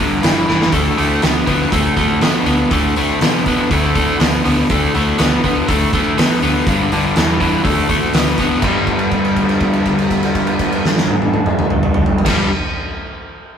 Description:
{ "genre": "blues rock power trio and southern rock", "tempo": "122 BPM", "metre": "4/4", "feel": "straight", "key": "G major", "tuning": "A4 = 438 Hz", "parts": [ { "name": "overdriven tonewheel organ", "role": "sustained chords", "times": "0.0-12.5 s", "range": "B3 to C5", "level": "-29 LUFS", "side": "right 2 dB", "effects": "none" }, { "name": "overdriven electric guitar", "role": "riff", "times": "0.0-12.5 s", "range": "G2 to B3", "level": "-15 LUFS", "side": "equal", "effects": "none" }, { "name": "vintage muted picked electric bass", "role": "bass", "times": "0.0-12.5 s", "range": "G1 to C3", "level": "-23 LUFS", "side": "equal", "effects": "none" }, { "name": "oversized low-tuned drum kit", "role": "drums", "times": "0.2-12.4 s", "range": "crash cymbal, hi-hat, kick drum, snare drum, toms", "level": "-18 LUFS", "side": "equal", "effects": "none" } ], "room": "light reverb", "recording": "rough rehearsal-room recording, tube saturation", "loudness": "-13 LUFS", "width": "side -8 dB against mid", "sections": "0.0-8.6 A section; 8.6-12.6 B section", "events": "drum fill 0.5; held note 8.6-12.3", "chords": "0.0 G7; 0.7 D7; 6.7 G7; 7.7 D7; 8.6 G9" }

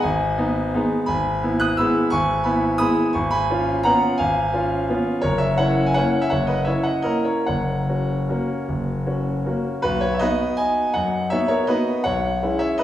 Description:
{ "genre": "classical, piano waltz", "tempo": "138-182 BPM", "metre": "3/4", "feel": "rubato", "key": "B major", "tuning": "A4 = 440 Hz", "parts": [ { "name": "bright concert grand piano", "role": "solo", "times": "0.0-12.8 s", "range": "F#1 to F#6", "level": "-19 LUFS", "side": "equal", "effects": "none" } ], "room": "wet recital hall reverb, RT60 1.6 s", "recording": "heard from further back in the room", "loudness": "-19 LUFS", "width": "side -12 dB against mid", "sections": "0.0-9.8 A section; 9.8-12.8 B section", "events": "none", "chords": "0.0 G#m; 1.1 E/G#; 3.2 C#7/G#; 5.2 F#7; 7.5 F#; 9.8 B; 12.1 C#m7/B" }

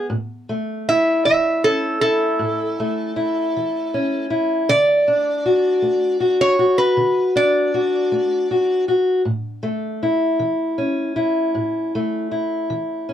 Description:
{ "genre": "blues", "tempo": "52 BPM (dotted quarters)", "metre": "12/8", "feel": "straight", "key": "A major", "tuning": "A4 = 438 Hz", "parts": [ { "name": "fingerpicked steel-string acoustic guitar", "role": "accompaniment", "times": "0.0-13.1 s", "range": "A2 to F#4", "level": "-19 LUFS", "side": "left 1 dB", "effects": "none" }, { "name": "lap resonator guitar", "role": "melody", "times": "0.9-8.8 s", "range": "A4 to E5", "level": "-19 LUFS", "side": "right 2 dB", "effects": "none" } ], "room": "moderate booth ambience, RT60 0.2 s", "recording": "dark, warm production", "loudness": "-17 LUFS", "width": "side -10 dB against mid", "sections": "0.1-13.1 A section", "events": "none", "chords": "0.1 A; 4.7 D; 9.3 A" }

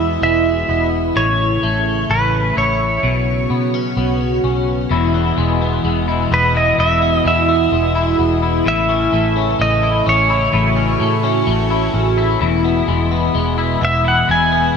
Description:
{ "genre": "dream pop", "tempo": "64 BPM", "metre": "4/4", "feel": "straight", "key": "E major", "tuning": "A4 = 440 Hz", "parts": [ { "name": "pedal steel guitar", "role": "melody", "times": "0.0-14.8 s", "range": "B4 to G#5", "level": "-18 LUFS", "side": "right 1 dB", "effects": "shimmer reverb, digital delay" }, { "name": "phased analog pad", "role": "sustained chords", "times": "0.0-14.8 s", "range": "B2 to F#4", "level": "-20 LUFS", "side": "right 2 dB", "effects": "phaser, chorus, shimmer reverb" }, { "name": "electric guitar at the edge of break-up", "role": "arpeggios", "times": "0.0-14.8 s", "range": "E2 to E4", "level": "-20 LUFS", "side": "left 6 dB", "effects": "ensemble chorus, shimmer reverb, digital delay" }, { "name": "vintage muted fingered electric bass", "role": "bass", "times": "0.0-14.7 s", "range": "E1 to B2", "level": "-20 LUFS", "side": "equal", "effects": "none" } ], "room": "moderate plate reverb, RT60 3.5 s", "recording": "none", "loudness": "-13 LUFS", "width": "side -6 dB against mid", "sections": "0.0-4.9 A section; 4.9-14.8 B section", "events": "none", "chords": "0.0 E; 1.2 A; 3.0 Bsus2; 4.9 E; 8.7 A; 12.4 E" }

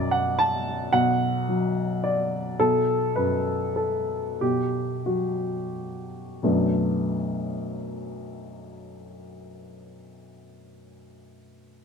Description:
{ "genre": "neoclassical minimalist piano", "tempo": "86-111 BPM", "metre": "3/4", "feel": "rubato", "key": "B minor", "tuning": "A4 = 439 Hz", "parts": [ { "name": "warm baby grand piano", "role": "solo", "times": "0.0-11.8 s", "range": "B1 to A5", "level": "-24 LUFS", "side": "equal", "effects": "none" } ], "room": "little or no reverb", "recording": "close, detailed microphones", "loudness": "-23 LUFS", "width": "side -6 dB against mid", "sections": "0.0-6.4 A section; 6.4-10.5 B section", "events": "slowing down 1.8-6.4", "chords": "0.0 Bm7" }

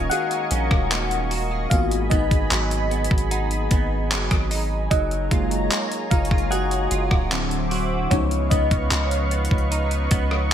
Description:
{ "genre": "contemporary R&B", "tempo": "75 BPM", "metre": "4/4", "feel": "straight", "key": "G# dorian", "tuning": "A4 = 440 Hz", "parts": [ { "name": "FM electric piano with soft pad layer", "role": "accompaniment", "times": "0.0-10.5 s", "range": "E#3 to F#5", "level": "-26 LUFS", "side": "left 2 dB", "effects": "chorus, phaser" }, { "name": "lush unison pad", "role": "sustained chords", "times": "0.0-10.5 s", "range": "G#4 to D6", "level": "-30 LUFS", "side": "right 1 dB", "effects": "chorus" }, { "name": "direct-recorded clean electric guitar", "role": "arpeggios", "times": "0.0-10.5 s", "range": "G#2 to G#4", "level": "-30 LUFS", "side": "right 5 dB", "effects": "analog chorus, ping-pong delay" }, { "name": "long sustained 808-style bass", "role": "bass", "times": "0.0-10.5 s", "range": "D1 to C#2", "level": "-25 LUFS", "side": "equal", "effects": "none" }, { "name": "detuned 8-bit digital drum machine", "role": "drums", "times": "0.1-10.5 s", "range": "handclaps, hi-hat, kick drum, rim click", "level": "-22 LUFS", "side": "equal", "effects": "overdrive, gated reverb" }, { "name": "folk marimba with soft mallets", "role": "texture", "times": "0.1-4.4 s", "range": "E#5 to A#5", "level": "-36 LUFS", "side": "left 5 dB", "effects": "none" } ], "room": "light reverb, digital ambience", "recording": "bright 1980s-style digital production", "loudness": "-19 LUFS", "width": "side -9 dB against mid", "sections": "0.0-10.5 A section", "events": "FM electric piano solo 0.0-10.5", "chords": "0.0 D#7sus4; 1.7 G#m7; 4.9 F#maj9; 7.3 D9; 8.1 C#9" }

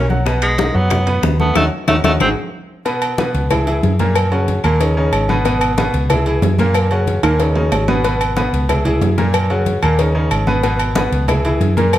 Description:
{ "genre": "latin, salsa", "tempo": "185 BPM", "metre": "4/4", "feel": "straight", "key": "G# minor", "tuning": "A4 = 440 Hz", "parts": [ { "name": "clear tenor saxophone", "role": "melody", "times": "0.0-2.3 s", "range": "G#3 to B#3", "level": "-18 LUFS", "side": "equal", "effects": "none" }, { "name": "bright grand piano", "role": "accompaniment", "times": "0.0-12.0 s", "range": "A#2 to B5", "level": "-19 LUFS", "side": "equal", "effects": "none" }, { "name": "hollow-body short-scale fingered electric bass", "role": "bass", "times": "0.0-12.0 s", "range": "G#1 to F#2", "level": "-17 LUFS", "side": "equal", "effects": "none" }, { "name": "bongos and cowbell", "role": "percussion", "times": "0.1-12.0 s", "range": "none", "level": "-24 LUFS", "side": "left 5 dB", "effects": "none" }, { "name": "congas", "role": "percussion", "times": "0.1-12.0 s", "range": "none", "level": "-23 LUFS", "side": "left 2 dB", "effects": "none" }, { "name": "claves", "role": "percussion", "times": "0.4-12.0 s", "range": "none", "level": "-29 LUFS", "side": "left 7 dB", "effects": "none" }, { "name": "timbales and agogo bells", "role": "percussion", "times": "0.4-12.0 s", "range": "none", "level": "-23 LUFS", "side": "right 4 dB", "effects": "none" } ], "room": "moderate large studio reverb, RT60 1.2 s", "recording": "none", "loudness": "-13 LUFS", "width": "side -13 dB against mid", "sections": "0.0-2.9 A section; 2.9-12.0 B section", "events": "drum fill 1.6-2.9, 7.2-8.0; band accent 1.6-2.9", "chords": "0.3 B6; 1.6 D#m7b5; 2.2 G#7(no3); 2.9 Bsus2; 3.5 C#m; 4.2 F#; 4.8 G#madd11; 5.5 G#m; 6.1 C#m; 6.7 F#; 7.4 G#madd11; 8.0 G#m; 8.7 C#m; 9.3 F#; 10.0 G#madd11; 10.6 G#m; 11.3 C#m" }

